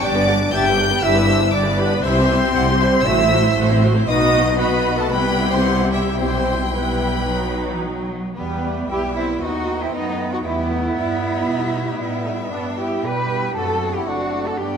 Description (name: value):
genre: quick classical-period movement for symphony orchestra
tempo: 116 BPM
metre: 4/4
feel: rubato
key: E minor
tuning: A4 = 440 Hz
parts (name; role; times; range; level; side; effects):
- rich chamber violin section; melody; 0.0-14.8 s; F#5 to A6; -27 LUFS; left 3 dB; none
- mellow clarinet; second line; 0.0-14.8 s; G3 to G5; -27 LUFS; equal; none
- mellow hollow small flute group; second line; 0.0-14.8 s; G4 to B5; -26 LUFS; right 2 dB; none
- rich chamber violin section; second line; 0.0-14.8 s; B4 to G5; -29 LUFS; left 4 dB; none
- rich symphonic viola section; accompaniment; 0.0-14.8 s; F#3 to B4; -26 LUFS; right 2 dB; none
- dark French horn section; sustained chords; 0.0-14.8 s; G3 to G4; -26 LUFS; left 4 dB; none
- rich chamber double bass section; bass; 0.0-14.8 s; F#1 to B2; -24 LUFS; right 2 dB; none
- warm chamber cello section; bass; 0.0-14.8 s; G2 to B4; -24 LUFS; right 2 dB; none
- dark trumpet section; stabs; 8.4-14.8 s; G3 to G4; -27 LUFS; right 2 dB; none
room: wet concert hall reverb, RT60 2.4 s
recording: none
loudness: -17 LUFS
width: side -7 dB against mid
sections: 0.0-8.4 A section; 8.4-14.8 B section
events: none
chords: 0.0 G; 2.0 C; 3.1 F#m7b5/A; 4.1 B; 5.1 C; 6.2 Em/B; 7.3 B; 8.4 Em; 9.4 B7/D#; 10.4 Em; 12.5 G; 13.6 D7/F#